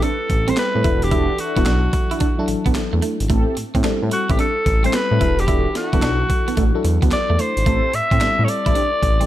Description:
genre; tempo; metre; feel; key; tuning
R&B, new jack swing; 110 BPM; 4/4; swing 66% on 16ths; A dorian; A4 = 442 Hz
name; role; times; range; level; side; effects
raspy alto saxophone; melody; 0.0-9.3 s; F#4 to E5; -21 LUFS; left 1 dB; none
FM electric piano with auto-pan; accompaniment; 0.0-9.3 s; E3 to B4; -25 LUFS; left 2 dB; phaser
electric guitar at the edge of break-up; riff; 0.0-9.3 s; A3 to E4; -27 LUFS; right 5 dB; wide subtle chorus
mellow synth brass; stabs; 0.0-9.3 s; C4 to A4; -29 LUFS; equal; chorus
breakbeat sampler-style drum kit; drums; 0.0-9.3 s; handclaps, hi-hat, kick drum, snare drum; -21 LUFS; equal; none
smooth synth bass; bass; 0.3-9.2 s; E1 to A2; -21 LUFS; equal; none
room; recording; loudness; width
digital ambience; none; -16 LUFS; side -13 dB against mid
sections
0.0-9.3 A section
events
none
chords
0.0 Am7; 0.8 E9sus4; 3.3 Am7; 5.2 E9sus4; 7.7 Am7

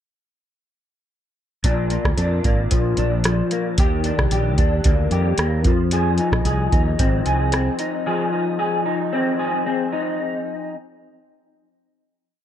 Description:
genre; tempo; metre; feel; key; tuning
indie pop, bedroom pop; 112 BPM; 4/4; straight; F dorian; A4 = 441 Hz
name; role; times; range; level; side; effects
electric guitar through a small old amp; accompaniment; 1.6-10.7 s; Bb2 to Ab4; -21 LUFS; left 2 dB; ensemble chorus, vibrato effect
mellow fretless electric bass; bass; 1.6-7.7 s; Ab1 to F2; -21 LUFS; right 1 dB; none
soft vintage rhythm box; drums; 1.6-7.9 s; hi-hat, kick drum, rim click; -21 LUFS; equal; none
room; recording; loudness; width
little or no reverb; dark, warm production; -18 LUFS; side -10 dB against mid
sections
1.6-10.2 A section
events
none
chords
1.6 Bb; 3.8 Ebmaj7; 5.7 Fm7

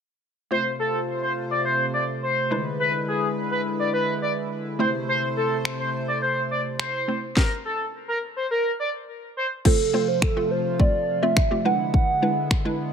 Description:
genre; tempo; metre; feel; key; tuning
dance-pop; 105 BPM; 4/4; straight; F major; A4 = 440 Hz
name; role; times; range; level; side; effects
expressive synth lead; melody; 0.5-9.5 s; G#4 to D5; -25 LUFS; left 1 dB; chorus, phaser, sidechain pumping, ping-pong delay
hollow square pluck; accompaniment; 0.5-12.9 s; G#3 to D5; -27 LUFS; equal; chorus, sidechain pumping
chorused pulse-width pad; sustained chords; 0.5-12.9 s; C3 to C5; -29 LUFS; equal; sidechain pumping
house drum kit; drums; 5.7-12.6 s; crash cymbal, finger snaps, kick drum, snare drum; -21 LUFS; left 1 dB; none
hollow clarinet-like synth lead; melody; 9.7-12.8 s; A4 to Gb5; -23 LUFS; right 4 dB; chorus, phaser, ping-pong delay
room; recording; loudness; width
light reverb, digital ambience; none; -21 LUFS; side -7 dB against mid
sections
0.5-9.7 A section; 9.7-12.9 B section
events
none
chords
0.5 F; 2.5 E7; 4.8 Am; 7.4 N.C.; 9.7 F; 11.7 E7

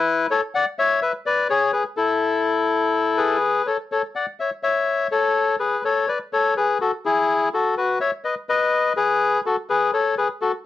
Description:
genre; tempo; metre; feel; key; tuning
tango; 125 BPM; 4/4; rubato; A major; A4 = 439 Hz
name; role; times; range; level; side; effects
bandoneon; solo; 0.0-10.5 s; E4 to F#5; -19 LUFS; left 3 dB; cassette tape
room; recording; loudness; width
moderate studio ambience, RT60 0.5 s; home recording on cassette; -19 LUFS; side -13 dB against mid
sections
0.0-3.9 A section; 3.9-10.7 A section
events
none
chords
0.0 E5; 1.0 G#dim; 2.0 A5; 3.9 A; 5.8 F#m; 7.7 B; 9.7 E6 (rootless)

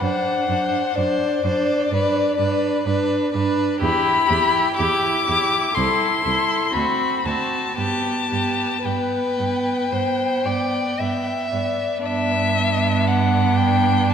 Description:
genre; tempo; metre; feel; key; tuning
classical, slow romantic movement for string quartet; 55-64 BPM; 4/4; rubato; G major; A4 = 440 Hz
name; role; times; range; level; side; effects
warm violin; melody; 0.0-14.1 s; D5 to D6; -22 LUFS; left 5 dB; none
rich violin; second line; 0.0-14.1 s; D4 to E5; -25 LUFS; left 1 dB; none
rich viola; accompaniment; 0.0-14.1 s; B3 to E4; -24 LUFS; right 4 dB; none
clear cello; bass; 0.0-14.1 s; C2 to G2; -26 LUFS; right 4 dB; none
room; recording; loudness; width
wet concert hall reverb, RT60 2.1 s; none; -18 LUFS; side -8 dB against mid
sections
0.0-12.1 A section; 12.1-14.1 A section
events
none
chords
0.0 D7/F#; 1.9 G; 3.8 Em; 5.8 Am/C; 6.8 D6; 7.8 G

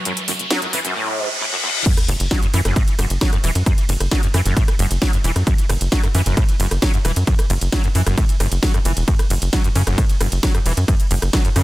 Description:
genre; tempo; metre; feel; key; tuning
driving peak-time techno; 133 BPM; 4/4; straight; F# minor; A4 = 440 Hz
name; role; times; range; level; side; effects
swarming drone; drone; 0.0-1.0 s; F#3; -38 LUFS; left 1 dB; none
riser, reverse cymbal and sub drop; sound effects; 0.0-3.7 s; none; -24 LUFS; left 1 dB; none
overdriven acid bass; riff; 0.1-11.6 s; E2 to F#3; -24 LUFS; equal; ensemble chorus, sidechain pumping, tape echo
techno drum kit; drums; 0.1-11.6 s; crash cymbal, hi-hat, ride cymbal, rim click, snare drum; -24 LUFS; equal; overdrive, small room ambience
tight sequencer bass; bass; 0.3-11.6 s; E1 to F#2; -18 LUFS; equal; sidechain pumping
electronic kick drum; drums; 1.9-11.4 s; none; -17 LUFS; equal; overdrive, small room ambience
room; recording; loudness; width
little or no reverb; dense, heavily limited modern master, high-pass filter; -16 LUFS; side -17 dB against mid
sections
0.0-1.9 A section; 1.9-11.6 B section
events
build-up 0.0-1.9; riser 0.0-1.9; reverse cymbal 1.0-1.9; drop 1.9-11.6; impact 1.9-3.7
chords
0.0 F#m; 1.9 F#5

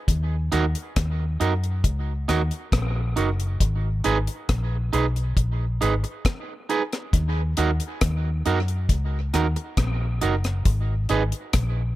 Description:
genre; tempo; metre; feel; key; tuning
dub reggae; 68 BPM; 4/4; straight; Eb minor; A4 = 442 Hz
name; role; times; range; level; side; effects
vintage muted fingered electric bass; bass; 0.1-12.0 s; Gb1 to Gb2; -24 LUFS; equal; none
deep reggae drum kit; drums; 0.1-11.7 s; hi-hat, kick drum, rim click; -24 LUFS; left 1 dB; none
electric guitar at the edge of break-up; accompaniment; 0.5-11.2 s; Eb4 to Cb5; -27 LUFS; right 6 dB; high-pass filter, tape echo
room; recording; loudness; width
small room ambience; none; -21 LUFS; side -15 dB against mid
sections
0.0-12.0 A section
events
none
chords
0.1 Ebm; 3.6 Abm; 7.1 Ebm; 10.7 N.C.

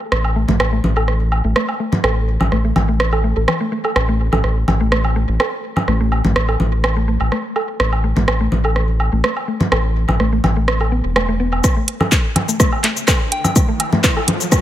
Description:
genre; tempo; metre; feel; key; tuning
minimal techno; 125 BPM; 4/4; straight; unclear; A4 = 440 Hz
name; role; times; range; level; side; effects
round analog bass; bass; 0.1-11.6 s; E1 to A1; -17 LUFS; equal; sidechain pumping
electronic rim click, woodblock and congas; percussion; 0.1-14.6 s; none; -19 LUFS; right 1 dB; tape echo
mallet-like synth pluck; riff; 0.4-14.2 s; E3 to A4; -23 LUFS; equal; chorus, vintage 12-bit sampler grit, sidechain pumping, tape echo
electronic kick drum; drums; 11.6-14.6 s; none; -15 LUFS; equal; none
house drum kit; drums; 11.6-14.6 s; handclaps, hi-hat, shaker; -19 LUFS; left 1 dB; none
riser; sound effects; 12.8-14.6 s; none; -28 LUFS; left 1 dB; none
soft synth bell; melody; 13.3-13.5 s; G5; -27 LUFS; left 3 dB; chorus, tape echo
room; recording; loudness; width
light reverb; none; -14 LUFS; side -12 dB against mid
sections
0.0-11.6 A section; 11.6-14.6 B section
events
build-up 11.6-14.6; riser 12.8-14.6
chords
0.0 A5

